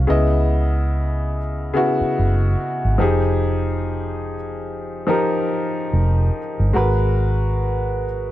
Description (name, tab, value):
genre	R&B, neo-soul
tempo	72 BPM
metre	4/4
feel	swing 57% on 16ths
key	unclear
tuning	A4 = 440 Hz
part	clear upright piano	accompaniment	0.0-8.3 s	Db3 to Eb5	-21 LUFS	left 1 dB	none
part	vintage muted fingered electric bass	bass	0.0-8.3 s	F1 to Db2	-19 LUFS	equal	none
room	light reverb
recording	dark, warm production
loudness	-18 LUFS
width	side -14 dB against mid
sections	0.0-8.3 A section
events	none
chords	0.1 Dbm9; 3.0 Fm9; 6.7 Abm9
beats	| 0.07 0.91 1.74 2.58 | 3.41 4.24 5.08 5.91 | 6.74 7.58